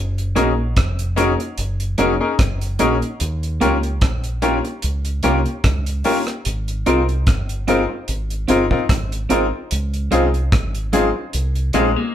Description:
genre	lovers rock reggae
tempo	74 BPM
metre	4/4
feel	swing 55% on 16ths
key	Ab major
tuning	A4 = 442 Hz
part	deep dub fingered electric bass	bass	0.0-11.9 s	F1 to Eb2	-22 LUFS	equal	none
part	deep reggae drum kit	drums	0.2-11.9 s	hi-hat, kick drum, rim click	-20 LUFS	equal	none
part	bright grand piano	accompaniment	0.4-11.9 s	C4 to Bb4	-20 LUFS	left 4 dB	none
part	electric guitar through a small old amp	stabs	0.4-11.9 s	Ab3 to Db5	-20 LUFS	right 3 dB	none
part	electric guitar through a small old amp	arpeggios	11.7-12.1 s	Ab3 to Bb3	-22 LUFS	left 5 dB	none
room	moderate large studio reverb, RT60 0.9 s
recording	band playing live in one room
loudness	-17 LUFS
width	side -10 dB against mid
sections	0.0-12.1 A section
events	none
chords	0.0 Gb6; 3.2 Eb7; 6.5 Ab6; 9.7 Dbmaj7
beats	0.77 1.58 2.39 | 3.21 4.02 4.83 5.64 | 6.46 7.27 8.08 8.89 | 9.71 10.52 11.33

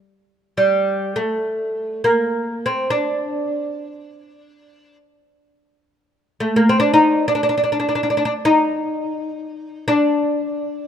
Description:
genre	Turkish makam ensemble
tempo	free time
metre	none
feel	none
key	unclear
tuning	A4 = 440 Hz
part	oud	solo	0.6-10.9 s	G3 to Eb4	-17 LUFS	equal	none
room	light reverb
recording	rough home demo mix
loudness	-17 LUFS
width	side -8 dB against mid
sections	0.0-10.9 A section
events	none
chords	none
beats	free time

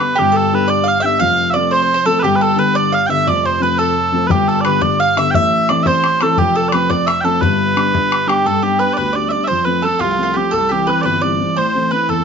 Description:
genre	celtic folk, Celtic jig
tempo	116 BPM (dotted quarters)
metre	6/8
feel	straight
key	G mixolydian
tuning	A4 = 442 Hz
part	mellow small bagpipes	melody	0.0-12.2 s	F4 to G5	-16 LUFS	right 3 dB	none
part	warm upright piano	accompaniment	0.0-12.2 s	F1 to D4	-18 LUFS	left 3 dB	none
part	mandolin	second line	0.2-12.2 s	F4 to F5	-20 LUFS	right 2 dB	none
part	bodhran	percussion	4.3-8.4 s	none	-20 LUFS	left 4 dB	none
room	moderate studio reverb, RT60 0.6 s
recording	nothing above 7.7 kHz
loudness	-13 LUFS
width	side -6 dB against mid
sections	0.2-8.5 A section; 8.5-12.2 B section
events	none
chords	0.2 G; 1.2 F; 2.2 G; 3.3 F; 4.3 G; 5.3 Am; 6.4 F; 7.4 G; 9.5 F; 10.5 C; 11.6 Am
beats	| 0.17 0.68 | 1.20 1.72 | 2.23 2.75 | 3.27 3.79 | 4.30 4.82 | 5.34 5.86 | 6.38 6.90 | 7.42 7.93 | 8.45 8.97 | 9.49 10.01 | 10.53 11.05 | 11.57 12.09

